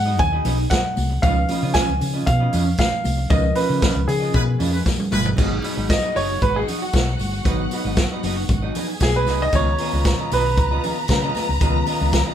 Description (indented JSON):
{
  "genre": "disco",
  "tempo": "116 BPM",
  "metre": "4/4",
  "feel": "straight",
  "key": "G# dorian",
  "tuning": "A4 = 439 Hz",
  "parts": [
    { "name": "clear baby grand piano", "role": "melody", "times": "0.0-10.8 s", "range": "F#4 to G#5", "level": "-23 LUFS", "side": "right 1 dB", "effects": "none" },
    { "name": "mellow tine electric piano", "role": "accompaniment", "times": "0.0-12.3 s", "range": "D#3 to B4", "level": "-30 LUFS", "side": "left 3 dB", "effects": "medium stereo tremolo" },
    { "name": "hollow-body short-scale fingered electric bass", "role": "bass", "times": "0.0-12.2 s", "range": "F#1 to C#3", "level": "-22 LUFS", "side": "equal", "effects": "none" },
    { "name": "semi-hollow electric guitar", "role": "accompaniment", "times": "0.1-12.3 s", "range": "B3 to D#5", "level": "-29 LUFS", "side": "right 4 dB", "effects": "none" },
    { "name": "vintage drum kit", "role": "drums", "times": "0.2-12.3 s", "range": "crash cymbal, hi-hat, kick drum, snare drum, toms", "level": "-22 LUFS", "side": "equal", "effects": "none" },
    { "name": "congas", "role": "percussion", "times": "0.2-12.2 s", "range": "none", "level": "-33 LUFS", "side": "left 3 dB", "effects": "none" },
    { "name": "tambourine", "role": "percussion", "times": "0.2-12.2 s", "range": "none", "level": "-38 LUFS", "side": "left 6 dB", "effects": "none" },
    { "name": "clear horn section", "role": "stabs", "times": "4.3-5.3 s", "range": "G#3 to B4", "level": "-27 LUFS", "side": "equal", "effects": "none" },
    { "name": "warm symphonic violin section", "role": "second line", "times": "5.4-12.3 s", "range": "F#4 to A#5", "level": "-28 LUFS", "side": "left 2 dB", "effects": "none" }
  ],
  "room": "wet studio reverb, RT60 0.6 s",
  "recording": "band playing live in one room",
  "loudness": "-18 LUFS",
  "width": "side -10 dB against mid",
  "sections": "0.0-5.4 A section; 5.4-12.3 B section",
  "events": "band accent 3.3-5.4; drum fill 4.9-5.4; grand piano solo 5.4-12.3",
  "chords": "0.0 G#m7; 1.2 C#9; 5.4 G#m7; 9.5 C#9"
}